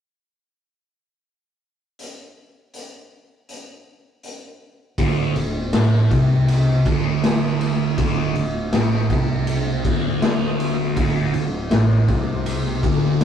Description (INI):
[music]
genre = psychedelic rock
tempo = 80 BPM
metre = 4/4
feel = straight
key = unclear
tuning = A4 = 440 Hz
[part]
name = raw garage drum kit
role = drums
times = 2.0-13.2 s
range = hi-hat, kick drum, ride cymbal, snare drum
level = -22 LUFS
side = left 2 dB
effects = none
[part]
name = thick fuzz guitar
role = riff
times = 5.0-13.2 s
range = D2 to C3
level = -19 LUFS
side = right 1 dB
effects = distortion, phaser
[part]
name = upright bass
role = bass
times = 5.0-13.2 s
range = D1 to C2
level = -28 LUFS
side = left 1 dB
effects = none
[sound]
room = moderate small room reverb, RT60 0.5 s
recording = rough rehearsal-room recording, warm saturation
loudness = -17 LUFS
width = side -8 dB against mid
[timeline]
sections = 2.0-5.0 A section; 5.0-13.2 B section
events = none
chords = 2.0 N.C.; 5.0 D5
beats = | 1.99 2.74 3.49 4.24 | 4.99 5.74 6.49 7.23 | 7.98 8.73 9.47 10.22 | 10.97 11.71 12.46 13.20